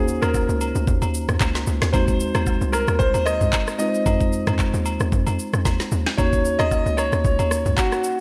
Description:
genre	amapiano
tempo	113 BPM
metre	4/4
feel	swing 55% on 16ths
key	Eb dorian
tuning	A4 = 440 Hz
part	clear concert grand piano	melody	0.0-8.2 s	Gb4 to Eb5	-26 LUFS	equal	tape echo
part	mellow tine electric piano	accompaniment	0.0-8.2 s	Ab3 to Db5	-29 LUFS	equal	none
part	hollow log drum bass	bass	0.0-7.8 s	C2 to F2	-26 LUFS	equal	none
part	smooth R&B drum kit	drums	0.1-8.2 s	handclaps, kick drum, rim click, shaker, snare drum, toms	-26 LUFS	equal	none
part	agogo bells and woodblock	percussion	0.2-7.9 s	none	-35 LUFS	equal	none
room	moderate lush hall reverb, RT60 1.6 s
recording	dreamy mix soaked in reverb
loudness	-21 LUFS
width	mono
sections	0.0-8.2 A section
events	drum fill 5.7-6.2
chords	0.0 Ebm7; 1.9 Ab7; 3.8 Fm7; 6.2 Ebm7

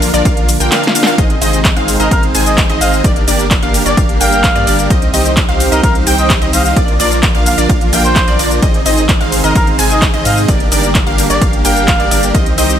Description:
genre	EDM, festival progressive house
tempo	129 BPM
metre	4/4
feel	straight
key	unclear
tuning	A4 = 442 Hz
part	lush unison pad	sustained chords	0.0-12.8 s	C3 to G4	-21 LUFS	equal	chorus, sidechain pumping
part	wide unison pluck	arpeggios	0.0-12.8 s	D5 to Ab5	-20 LUFS	equal	sidechain pumping, tape echo
part	supersaw chords	riff	0.0-12.8 s	Bb3 to Ab5	-16 LUFS	right 1 dB	sidechain pumping, tape echo
part	saturated sub bass	bass	0.0-12.8 s	G1 to Ab2	-18 LUFS	equal	sidechain pumping
part	big-room dance drum kit	drums	0.0-12.8 s	handclaps, hi-hat, ride cymbal, shaker, snare drum	-17 LUFS	equal	overdrive
part	electronic kick drum	drums	0.3-12.4 s	none	-14 LUFS	equal	overdrive
part	trumpet with cup mute	melody	2.0-12.3 s	Bb4 to F5	-18 LUFS	equal	tape echo
room	light reverb, digital ambience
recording	none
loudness	-9 LUFS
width	side -9 dB against mid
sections	0.0-12.8 A section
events	drum fill 0.7-1.2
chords	0.0 Bb; 1.2 Ab; 3.0 Gm; 4.9 Cm; 6.8 Bb; 8.6 Ab; 10.5 Gm

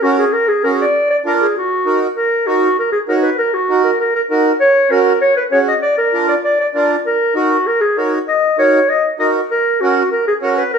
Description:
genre	latin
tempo	196 BPM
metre	4/4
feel	straight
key	Eb minor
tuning	A4 = 439 Hz
part	warm clarinet	melody	0.0-10.8 s	Gb4 to Eb5	-14 LUFS	equal	none
part	accordion	accompaniment	0.0-10.6 s	Db4 to Db5	-17 LUFS	right 3 dB	none
room	moderate large studio reverb, RT60 1.0 s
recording	heard from further back in the room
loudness	-12 LUFS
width	side -6 dB against mid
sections	0.0-2.2 A section; 2.2-10.8 B section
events	none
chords	0.0 Gb; 0.9 Bb; 1.6 Ebm; 4.6 Gb; 5.8 Bb; 7.1 Ebm; 9.5 Gb

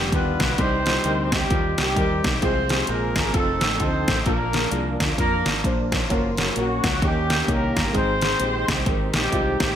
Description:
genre	uptempo gospel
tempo	130 BPM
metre	4/4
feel	swing 60% on 8ths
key	unclear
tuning	A4 = 440 Hz
part	dark horn section	melody	0.0-9.8 s	F3 to C5	-25 LUFS	equal	none
part	clear upright piano	accompaniment	0.0-9.7 s	G2 to C5	-28 LUFS	left 1 dB	wide subtle chorus
part	mellow tonewheel organ	sustained chords	0.0-9.7 s	D3 to C5	-32 LUFS	right 3 dB	none
part	fingered electric bass	bass	0.0-9.8 s	F1 to F2	-28 LUFS	equal	none
part	pop drum kit	drums	0.1-9.7 s	hi-hat, kick drum, snare drum	-23 LUFS	equal	gated reverb
room	moderate plate reverb, RT60 1.9 s, digital ambience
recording	bright 1980s-style digital production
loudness	-19 LUFS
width	side -9 dB against mid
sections	0.0-9.8 A section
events	none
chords	0.0 G7; 0.6 Cm; 2.4 Fm/C; 3.3 F7; 4.3 Bb; 6.1 Gb; 7.0 Eb7; 7.9 Ab

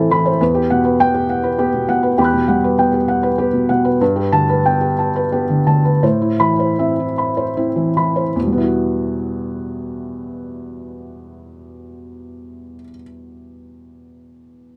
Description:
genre	neoclassical minimalist piano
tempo	75-102 BPM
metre	3/4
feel	rubato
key	E minor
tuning	A4 = 439 Hz
part	felt-muted upright piano	solo	0.0-14.8 s	E2 to F#6	-18 LUFS	equal	none
room	light reverb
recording	close, detailed microphones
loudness	-17 LUFS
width	mono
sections	0.0-8.4 A section; 8.4-12.8 B section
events	slowing down 3.1-8.4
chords	0.4 Emadd9; 4.0 Gadd9; 6.0 Amadd9; 8.4 Emadd9

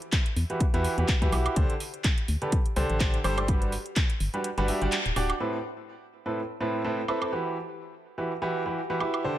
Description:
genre	piano house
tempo	125 BPM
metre	4/4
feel	swing 56% on 16ths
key	A dorian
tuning	A4 = 441 Hz
part	house drum kit	drums	0.0-9.2 s	handclaps, hi-hat, woodblock	-32 LUFS	right 2 dB	none
part	electronic kick drum	drums	0.1-4.1 s	none	-25 LUFS	equal	none
part	organ-like FM bass	bass	0.4-5.3 s	D1 to E2	-28 LUFS	equal	tube saturation, sidechain pumping
part	clear baby grand piano	riff	0.5-9.4 s	A2 to E5	-29 LUFS	right 1 dB	sidechain pumping, ping-pong delay
room	light reverb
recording	none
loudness	-25 LUFS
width	side -13 dB against mid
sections	0.0-5.4 A section; 5.4-9.4 B section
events	kick drops out 4.4-5.4; band accent 4.9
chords	0.0 Emadd9; 1.6 D7sus4; 3.5 Gmaj7; 5.4 Amadd9; 7.3 Emadd9

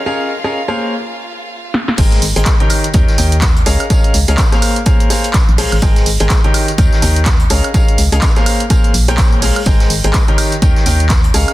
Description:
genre	piano house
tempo	125 BPM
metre	4/4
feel	swing 59% on 16ths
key	Ab major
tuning	A4 = 440 Hz
part	clear chamber violin section	sustained chords	0.0-2.0 s	F4 to F5	-27 LUFS	right 1 dB	sidechain pumping
part	clear grand piano	riff	0.1-11.5 s	Eb3 to G5	-18 LUFS	left 1 dB	sidechain pumping, tape echo
part	punchy analog drum machine	drums	1.7-11.5 s	crash cymbal, handclaps, hi-hat, snare drum, tambourine, woodblock	-19 LUFS	right 2 dB	low-pass filter on snare, low-pass filter on hats, low-pass filter on cymbals, low-pass filter on perc, low-pass filter on room
part	organ-like FM bass	bass	2.0-11.5 s	Ab1 to Eb2	-15 LUFS	equal	sidechain pumping
part	electronic kick drum	drums	2.0-11.2 s	none	-12 LUFS	equal	none
part	vintage drum kit	drums	2.0-11.5 s	hi-hat, snare drum, tambourine	-26 LUFS	equal	sidechain pumping on hats, high-pass filter on hats, high-pass filter on snare, sidechain pumping on perc, high-pass filter on perc, high-pass filter on room
room	small room ambience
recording	dense, heavily limited modern master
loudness	-10 LUFS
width	side -16 dB against mid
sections	0.0-2.0 A section; 2.0-11.5 B section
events	break 1.0-2.0; drum fill 1.7; drop 2.0-11.5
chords	0.0 Db69; 0.8 Bb5; 2.0 Abmaj9; 2.7 Eb7; 3.7 Db69; 4.6 Bbm9; 5.8 Abmaj9; 6.5 Eb7; 7.5 Db69; 8.5 Bbm9; 9.7 Abmaj9; 10.4 Eb7

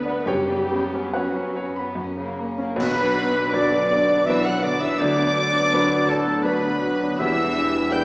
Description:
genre	classical, romantic movement for piano and orchestra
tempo	68-87 BPM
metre	3/4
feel	rubato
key	B minor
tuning	A4 = 439 Hz
part	clear grand piano	melody	0.0-8.0 s	E1 to B5	-26 LUFS	equal	none
part	dark studio violin section	melody	0.0-8.0 s	F#4 to G6	-29 LUFS	left 1 dB	none
part	warm studio violin section	second line	0.0-8.0 s	A#3 to G5	-30 LUFS	equal	none
part	dark symphonic viola section	accompaniment	0.0-8.0 s	B3 to B4	-28 LUFS	equal	none
part	dark symphonic double bass section	bass	0.0-8.0 s	B1 to F#2	-35 LUFS	equal	none
part	warm symphonic cello section	bass	0.0-8.0 s	A2 to B3	-31 LUFS	equal	none
part	timpani	percussion	0.3-1.5 s	F#2	-37 LUFS	equal	none
part	concert flute	second line	2.8-8.0 s	A4 to G5	-27 LUFS	equal	none
part	warm clarinet	second line	2.8-8.0 s	A4 to G5	-28 LUFS	equal	none
part	warm oboe	second line	2.8-8.0 s	A4 to G5	-27 LUFS	equal	none
part	bright trombone section	sustained chords	2.8-8.0 s	E3 to B3	-29 LUFS	equal	none
part	dark French horn section	sustained chords	2.8-8.0 s	D4 to B4	-26 LUFS	left 1 dB	none
part	clash cymbals and concert bass drum	percussion	2.8-4.2 s	none	-38 LUFS	equal	none
room	wet recital hall reverb, RT60 1.4 s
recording	heard from further back in the room, small speaker sound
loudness	-19 LUFS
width	side -25 dB against mid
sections	0.0-2.8 A section; 2.8-8.0 B section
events	band accent 2.8-3.5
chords	0.3 F#sus4; 2.0 F#; 2.8 Bm; 5.0 Bm/D; 7.2 Em7

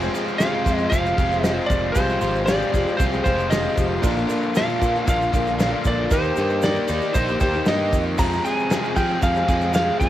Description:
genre	folk rock and heartland rock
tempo	116 BPM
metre	4/4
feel	straight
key	F dorian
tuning	A4 = 441 Hz
part	picked old ladder-braced acoustic guitar	accompaniment	0.0-10.1 s	F2 to G4	-28 LUFS	left 6 dB	cassette tape
part	warm upright piano	accompaniment	0.0-10.1 s	D4 to Bb4	-34 LUFS	right 7 dB	none
part	overdriven electric guitar	riff	0.0-10.1 s	F2 to Ab4	-24 LUFS	equal	cassette tape
part	modern bright picked electric bass	bass	0.0-10.1 s	F1 to F3	-26 LUFS	equal	none
part	egg shaker	percussion	0.0-10.1 s	none	-42 LUFS	right 11 dB	none
part	soft brush drum kit	drums	0.1-10.1 s	crash cymbal, hi-hat, kick drum, snare drum	-24 LUFS	equal	none
part	lightly driven lead guitar	melody	0.4-10.1 s	C5 to Bb5	-24 LUFS	right 1 dB	cassette tape, analog delay
room	light reverb, small room ambience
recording	home recording on cassette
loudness	-18 LUFS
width	side -13 dB against mid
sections	0.0-10.1 A section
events	none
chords	0.0 Fmadd9; 4.0 Bb; 6.1 Eb; 8.2 Fmadd9

